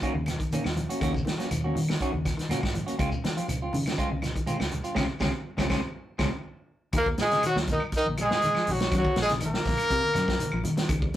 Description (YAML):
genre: afrobeat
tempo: 121 BPM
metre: 4/4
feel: straight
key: Eb dorian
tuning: A4 = 440 Hz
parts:
  - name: semi-hollow electric guitar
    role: stabs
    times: 0.0-6.3 s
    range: Eb3 to Gb4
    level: -31 LUFS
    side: right 1 dB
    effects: none
  - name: fingered electric bass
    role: bass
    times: 0.0-11.1 s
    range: Bb1 to Eb3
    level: -32 LUFS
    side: equal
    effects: none
  - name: vintage drum kit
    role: drums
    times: 0.0-11.2 s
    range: hi-hat, kick drum, snare drum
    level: -30 LUFS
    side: equal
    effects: none
  - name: shekere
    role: percussion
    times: 0.0-11.2 s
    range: none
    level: -41 LUFS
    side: right 1 dB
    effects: none
  - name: electric guitar at the edge of break-up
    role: arpeggios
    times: 0.1-11.1 s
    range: C3 to Gb3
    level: -34 LUFS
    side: left 2 dB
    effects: none
  - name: congas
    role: percussion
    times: 0.2-10.8 s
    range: none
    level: -36 LUFS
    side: equal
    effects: none
  - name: claves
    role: percussion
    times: 0.3-11.0 s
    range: none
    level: -41 LUFS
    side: equal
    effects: none
  - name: bright trumpet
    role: melody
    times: 7.0-10.6 s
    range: Eb4 to Bb4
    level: -28 LUFS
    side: left 1 dB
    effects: none
  - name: breathy tenor saxophone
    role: second line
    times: 7.0-10.6 s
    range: Eb3 to Bb3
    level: -28 LUFS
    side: right 1 dB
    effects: none
room: moderate studio reverb, RT60 0.5 s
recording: rough rehearsal-room recording, tube saturation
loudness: -24 LUFS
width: side -12 dB against mid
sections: 0.0-6.9 A section; 6.9-11.2 B section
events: band accent 5.0-6.9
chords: 0.0 Ebm7; 3.0 Dbmaj7; 6.9 Ebm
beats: 0.02 0.52 | 1.01 1.51 2.00 2.50 | 2.99 3.49 3.98 4.48 | 4.97 5.46 5.96 6.45 | 6.95 7.44 7.93 8.43 | 8.92 9.41 9.91 10.40 | 10.89